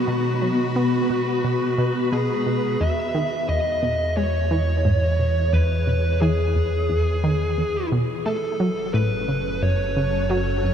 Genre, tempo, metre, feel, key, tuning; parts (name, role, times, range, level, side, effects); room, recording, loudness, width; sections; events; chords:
ambient, sequencer-driven space music; 88 BPM; 4/4; straight; E major; A4 = 441 Hz
fuzz lead guitar; melody; 0.0-10.7 s; F#4 to E5; -24 LUFS; left 1 dB; distortion, ping-pong delay
phased string machine; sustained chords; 0.0-10.7 s; B2 to F#5; -28 LUFS; equal; ensemble chorus, phaser
bubbling stepped-filter texture; texture; 0.0-2.8 s; G#3 to A#5; -38 LUFS; equal
analog pluck; riff; 0.1-10.7 s; E2 to B3; -24 LUFS; equal; chorus, ping-pong delay
analog drone; bass; 3.7-10.7 s; F#1 to E2; -24 LUFS; equal; chorus
wet huge ambient reverb, RT60 7.4 s; dark, warm production; -19 LUFS; side -8 dB against mid
0.0-2.8 A section; 2.8-10.7 B section
fade-in on string machine 2.8-10.7
0.0 B5; 2.8 Emaj7; 8.3 F#m